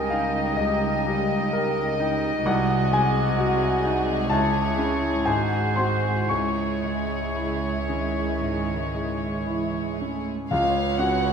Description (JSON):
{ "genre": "classical, romantic movement for piano and orchestra", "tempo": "56-66 BPM", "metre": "4/4", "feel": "rubato", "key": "C# minor", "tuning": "A4 = 440 Hz", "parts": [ { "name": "clear concert grand piano", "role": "melody", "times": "0.0-11.3 s", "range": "B#1 to C#6", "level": "-24 LUFS", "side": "left 1 dB", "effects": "none" }, { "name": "clear oboe", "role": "second line", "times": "0.0-10.2 s", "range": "B#4 to D#5", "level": "-32 LUFS", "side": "right 1 dB", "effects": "none" }, { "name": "mellow large flute ensemble", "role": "second line", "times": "0.0-10.2 s", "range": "E5 to G5", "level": "-34 LUFS", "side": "right 1 dB", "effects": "none" }, { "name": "warm studio violin section", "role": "second line", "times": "0.0-11.3 s", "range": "G#4 to F#5", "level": "-32 LUFS", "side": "left 5 dB", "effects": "none" }, { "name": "dark studio viola section", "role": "accompaniment", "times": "0.0-11.3 s", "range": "G3 to B4", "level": "-32 LUFS", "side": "right 2 dB", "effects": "none" }, { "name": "warm studio cello section", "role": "bass", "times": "0.0-11.3 s", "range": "C#2 to A3", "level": "-33 LUFS", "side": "right 2 dB", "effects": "none" }, { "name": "warm studio double bass section", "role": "bass", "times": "0.0-11.3 s", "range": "G#1 to C#2", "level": "-32 LUFS", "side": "right 3 dB", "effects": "none" }, { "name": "rich chamber violin section", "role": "melody", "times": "10.5-11.3 s", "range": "C#5", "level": "-34 LUFS", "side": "left 4 dB", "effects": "none" }, { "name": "timpani", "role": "percussion", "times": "10.5-11.3 s", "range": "C#3", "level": "-34 LUFS", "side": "left 2 dB", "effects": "none" } ], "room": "wet scoring stage reverb, RT60 1.9 s", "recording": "minimal, uncompressed stereo recording", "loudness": "-22 LUFS", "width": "side -6 dB against mid", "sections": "0.0-10.5 A section", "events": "none", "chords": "0.0 D#7/C#; 2.5 G#7/B#; 4.3 C#m; 5.3 G#7; 6.3 C#m; 10.5 C#7" }